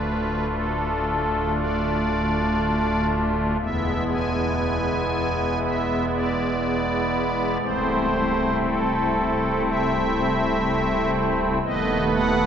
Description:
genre	classical, chorale-style piece for pipe organ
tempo	59 BPM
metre	4/4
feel	rubato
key	A minor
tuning	A4 = 440 Hz
part	pipe organ, strings celeste	solo	0.0-12.5 s	C1 to G#5	-20 LUFS	equal	none
room	wet cathedral reverb, RT60 5.2 s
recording	heard from further back in the room, nothing above 7.9 kHz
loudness	-21 LUFS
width	side -8 dB against mid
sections	0.0-12.5 A section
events	none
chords	0.0 Dm; 3.6 E; 7.6 Am/C; 11.6 B7/D#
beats	0.50 1.56 2.59 | 3.61 4.62 5.63 6.63 | 7.62 8.61 9.66 10.66 | 11.63

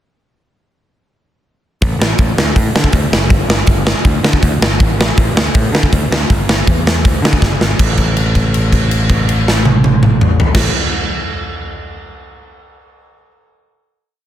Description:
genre	punk rock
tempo	161 BPM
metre	4/4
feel	straight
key	unclear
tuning	A4 = 440 Hz
part	overdriven picked electric bass	bass	1.8-10.7 s	F#1 to D3	-16 LUFS	equal	none
part	big rock drum kit	drums	1.8-10.6 s	crash cymbal, hi-hat, kick drum, snare drum, toms	-12 LUFS	equal	none
room	little or no reverb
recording	dense, heavily limited modern master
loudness	-11 LUFS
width	side -11 dB against mid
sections	1.8-7.8 verse; 7.8-10.8 final note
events	drum fill 7.4-7.8; held note 7.8-10.5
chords	none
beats	| 1.81 2.19 2.56 2.93 | 3.30 3.67 4.05 4.42 | 4.79 5.17 5.54 5.92 | 6.29 6.66 7.04 7.41 | 7.79 8.16 8.53 8.91 | 9.28 9.65 10.03 10.40

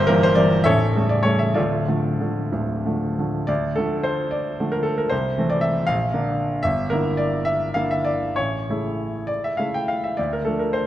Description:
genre	classical, romantic character piece for solo piano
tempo	61-80 BPM (dotted quarters)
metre	6/8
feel	rubato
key	D minor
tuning	A4 = 442 Hz
part	clear baby grand piano	solo	0.0-10.9 s	A0 to G5	-19 LUFS	equal	none
room	wet concert hall reverb, RT60 2.1 s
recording	none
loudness	-19 LUFS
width	side -12 dB against mid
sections	0.0-3.5 A section; 3.5-10.9 B section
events	none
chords	0.0 Edim/G; 0.7 A7; 1.6 Dm; 5.1 Am/C; 5.9 Bb; 6.7 Em7b5/G; 8.4 A; 10.2 Dm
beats	0.66 | 1.57 2.54 | 3.49 4.33 | 5.12 5.89 | 6.65 7.46 | 8.37 9.28 | 10.18

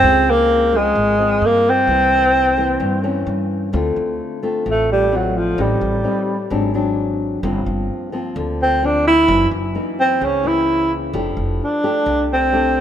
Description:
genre	bossa nova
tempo	130 BPM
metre	4/4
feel	straight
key	D minor from 3.7 s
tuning	A4 = 440 Hz
part	breathy tenor saxophone	melody	0.0-12.8 s	F3 to E4	-15 LUFS	equal	none
part	nylon-string guitar	accompaniment	0.0-12.8 s	F#2 to G4	-23 LUFS	left 2 dB	none
part	upright bass	bass	0.0-12.8 s	F1 to G2	-23 LUFS	equal	none
room	light reverb, studio reverb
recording	rough home demo mix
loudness	-15 LUFS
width	side -10 dB against mid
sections	0.0-3.7 A section; 3.7-12.8 B section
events	tenor saxophone solo 3.7-12.8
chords	0.0 Dbmaj7; 1.9 C7b9; 3.7 Dm7; 5.6 Am7b5; 6.5 G#7#11; 7.4 Gm7; 9.3 F#6; 11.1 F69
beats	| 0.03 0.49 0.95 1.42 | 1.88 2.34 2.80 3.27 | 3.73 4.19 4.66 5.12 | 5.58 6.04 6.51 6.97 | 7.43 7.90 8.36 8.82 | 9.29 9.75 10.21 10.68 | 11.14 11.60 12.07 12.53

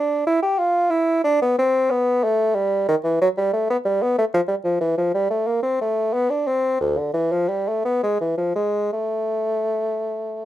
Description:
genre	classical, baroque-style fantasia for unaccompanied bassoon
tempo	54-62 BPM (dotted quarters)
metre	6/8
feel	rubato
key	A minor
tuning	A4 = 439 Hz
part	mellow bassoon	solo	0.0-10.4 s	D2 to G4	-19 LUFS	equal	none
room	light reverb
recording	none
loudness	-19 LUFS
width	side -13 dB against mid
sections	0.0-10.4 A section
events	none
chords	none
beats	| 0.91 1.91 | 2.88 3.85 | 4.81 5.81 | 6.81 7.84 | 8.92 10.04

